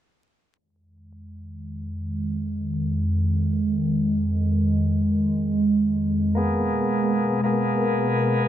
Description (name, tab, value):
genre	trip hop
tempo	83 BPM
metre	4/4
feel	straight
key	unclear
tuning	A4 = 440 Hz
part	warbly tape-like pad	sustained chords	1.6-8.5 s	F2 to Bb4	-22 LUFS	right 1 dB	chorus, built-in reverb, phaser
part	bright tonewheel organ	accompaniment	6.3-8.5 s	Bb3 to Ab4	-23 LUFS	left 2 dB	overdrive, stopped rotary speaker, harmonic tremolo
part	egg shaker	percussion	6.4-8.5 s	none	-72 LUFS	equal	none
room	light reverb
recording	dark, warm production, vinyl crackle, low-pass filter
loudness	-20 LUFS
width	side -11 dB against mid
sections	0.6-8.5 A section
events	filter sweep on ambient pad 0.6-8.5; filter sweep 0.6-8.5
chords	0.6 Fm7; 6.4 Abmadd9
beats	| 0.58 1.30 2.03 2.75 | 3.47 4.20 4.92 5.64 | 6.37 7.09 7.81